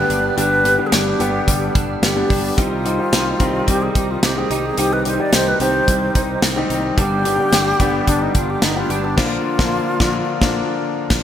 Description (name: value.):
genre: 1980s-style pop.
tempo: 109 BPM.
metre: 4/4.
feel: straight.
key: C harmonic minor.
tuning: A4 = 440 Hz.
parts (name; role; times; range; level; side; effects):
breathy alto flute; melody; 0.0-10.8 s; D4 to D5; -21 LUFS; equal; digital delay.
warm concert grand piano; accompaniment; 0.0-11.2 s; D3 to G4; -21 LUFS; left 3 dB; none.
direct-recorded clean electric guitar; riff; 0.0-9.4 s; F3 to Eb4; -27 LUFS; right 7 dB; ensemble chorus.
sustaining fretless electric bass; bass; 0.1-11.2 s; G1 to C2; -25 LUFS; equal; none.
modern studio drum kit; drums; 0.1-11.2 s; crash cymbal, hi-hat, kick drum, snare drum, tambourine; -19 LUFS; equal; gated reverb.
room: moderate plate reverb, RT60 2.8 s.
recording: bright 1980s-style digital production.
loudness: -15 LUFS.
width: side -10 dB against mid.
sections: 0.0-11.2 A section.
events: band accent 9.2-11.2.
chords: 0.0 G; 2.6 Cm; 7.0 G; 9.2 Bb.